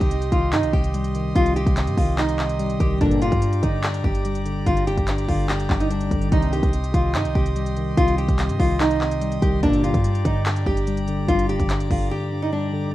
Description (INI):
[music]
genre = hip hop, trap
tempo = 145 BPM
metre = 4/4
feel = half-time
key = C minor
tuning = A4 = 440 Hz
[part]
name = nylon-string guitar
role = melody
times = 0.0-12.7 s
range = D4 to G4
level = -25 LUFS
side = equal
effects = low-pass filter, tape echo
[part]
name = mellow tine electric piano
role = accompaniment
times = 0.0-12.9 s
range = G2 to G3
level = -25 LUFS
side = left 1 dB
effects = none
[part]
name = pipe organ, cornet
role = sustained chords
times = 0.0-12.9 s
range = G4 to Eb6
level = -33 LUFS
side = right 2 dB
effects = none
[part]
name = warm 808-style bass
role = bass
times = 0.0-12.1 s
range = F1 to G2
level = -24 LUFS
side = equal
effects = none
[part]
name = trap drum kit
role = drums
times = 0.0-12.0 s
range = handclaps, hi-hat, kick drum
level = -24 LUFS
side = equal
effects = none
[part]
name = chorused polysynth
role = stabs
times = 3.0-3.3, 6.3-6.6, 9.6-9.9 s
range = G2 to Eb3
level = -25 LUFS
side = equal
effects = none
[sound]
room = little or no reverb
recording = rough home demo mix, vinyl crackle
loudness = -19 LUFS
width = side -15 dB against mid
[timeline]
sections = 0.0-12.9 A section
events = break 12.1-12.9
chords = 0.0 Cm; 3.0 Gm; 6.3 Cm; 9.6 Gm